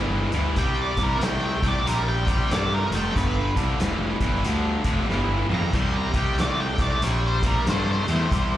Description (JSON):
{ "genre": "blues rock power trio and southern rock", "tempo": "93 BPM", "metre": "4/4", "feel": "swing 63% on 8ths", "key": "unclear", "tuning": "A4 = 438 Hz", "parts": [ { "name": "tight distorted guitar", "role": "riff", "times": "0.0-8.6 s", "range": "G2 to A3", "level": "-26 LUFS", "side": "equal", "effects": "distortion, slapback echo" }, { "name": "fuzz fingered electric bass", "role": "bass", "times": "0.0-8.6 s", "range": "F1 to G2", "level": "-25 LUFS", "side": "equal", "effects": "overdrive" }, { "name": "raw garage drum kit", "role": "drums", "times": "0.3-8.5 s", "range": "crash cymbal, hi-hat, kick drum, snare drum, toms", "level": "-27 LUFS", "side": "equal", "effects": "none" }, { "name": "octave-fuzz lead guitar", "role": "melody", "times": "0.6-8.5 s", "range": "Bb4 to C6", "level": "-29 LUFS", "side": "equal", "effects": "distortion, tape echo" } ], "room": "small room ambience", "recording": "live gig heard through the venue's PA, club reverb", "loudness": "-21 LUFS", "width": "side -13 dB against mid", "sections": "0.0-8.6 A section", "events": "drum fill 5.1-5.7", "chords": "0.0 G5; 0.6 C5; 3.2 G5; 5.7 C7(no3)", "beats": "| 0.58 1.22 1.87 2.51 | 3.16 3.80 4.45 5.09 | 5.74 6.38 7.02 7.67 | 8.31" }